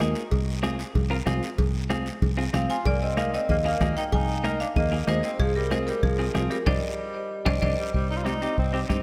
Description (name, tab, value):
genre	latin, cumbia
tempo	189 BPM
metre	4/4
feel	straight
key	C minor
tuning	A4 = 440 Hz
part	marimba with hard mallets	melody	0.0-0.1, 2.5-7.7 s	Ab4 to Ab5	-32 LUFS	equal	diffuse ambient delay
part	breathy tenor saxophone	second line	0.0-0.1, 2.5-9.0 s	Eb3 to F4	-36 LUFS	equal	diffuse ambient delay
part	semi-hollow electric guitar	accompaniment	0.0-9.0 s	Bb3 to Bb4	-34 LUFS	equal	none
part	fingered electric bass	bass	0.0-9.0 s	C2 to G2	-30 LUFS	equal	none
part	bombo	percussion	0.0-9.0 s	none	-31 LUFS	equal	none
part	congas	percussion	0.0-9.0 s	none	-35 LUFS	equal	none
part	guiro	percussion	0.0-9.0 s	none	-44 LUFS	equal	none
part	timbales and cowbell	percussion	0.0-7.7 s	none	-39 LUFS	equal	none
room	moderate lush hall reverb, RT60 2.5 s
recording	dreamy mix soaked in reverb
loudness	-26 LUFS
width	mono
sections	0.0-7.9 A section; 7.9-9.0 B section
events	band accent 6.7-7.9; drum fill 7.3-7.9; tenor saxophone solo 7.9-9.0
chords	0.3 Fm/C; 2.9 Absus2/C; 5.4 Fm/C; 6.7 Cmadd9; 7.9 Cm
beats	0.00 | 0.32 0.64 0.95 1.27 | 1.59 1.90 2.22 2.54 | 2.85 3.17 3.49 3.81 | 4.12 4.44 4.76 5.08 | 5.39 5.71 6.03 6.35 | 6.67 6.99 7.30 7.62 | 7.94 8.26 8.58 8.90